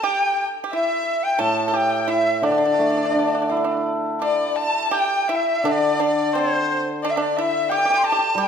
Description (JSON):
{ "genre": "chinese traditional, Chinese chamber ensemble", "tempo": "87 BPM", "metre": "2/4", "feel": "rubato", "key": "D shang mode", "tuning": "A4 = 445 Hz", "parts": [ { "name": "dizi", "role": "melody", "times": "0.0-8.5 s", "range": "C5 to A5", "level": "-22 LUFS", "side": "equal", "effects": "none" }, { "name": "clear erhu", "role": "second line", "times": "0.0-8.5 s", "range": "C5 to C6", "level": "-24 LUFS", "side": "left 6 dB", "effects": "none" }, { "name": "pipa", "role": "second line", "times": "0.0-8.5 s", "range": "C4 to A4", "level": "-27 LUFS", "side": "right 6 dB", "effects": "none" }, { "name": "hammered dulcimer", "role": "accompaniment", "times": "1.4-8.5 s", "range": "A2 to E4", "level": "-24 LUFS", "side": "right 1 dB", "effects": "none" } ], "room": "moderate scoring stage reverb, RT60 2.0 s", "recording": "minimal, uncompressed stereo recording", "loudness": "-18 LUFS", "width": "side -7 dB against mid", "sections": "0.0-4.2 A section; 4.2-8.5 B section", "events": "none", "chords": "none" }